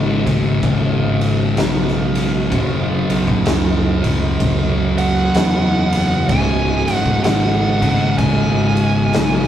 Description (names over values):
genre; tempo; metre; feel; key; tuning
stoner and doom metal; 64 BPM; 4/4; swing 62% on 8ths; unclear; A4 = 440 Hz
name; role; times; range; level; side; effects
thick fuzz guitar; riff; 0.0-9.5 s; C#2 to F#3; -19 LUFS; left 3 dB; distortion
thick fuzz guitar; riff; 0.0-9.5 s; C#2 to F#3; -23 LUFS; right 4 dB; distortion
modern bright fingered electric bass; bass; 0.0-9.5 s; C#1 to E2; -21 LUFS; equal; overdrive
oversized low-tuned drum kit; drums; 0.3-9.5 s; kick drum, ride cymbal, snare drum; -20 LUFS; right 1 dB; none
fuzz lead guitar; melody; 5.0-9.5 s; F#5 to G#5; -21 LUFS; right 3 dB; wah, distortion
room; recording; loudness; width
moderate studio reverb, RT60 0.5 s; rough rehearsal-room recording, tube saturation; -14 LUFS; side -10 dB against mid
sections
0.0-9.5 A section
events
none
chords
0.0 C#5; 2.5 F#5; 6.3 C#5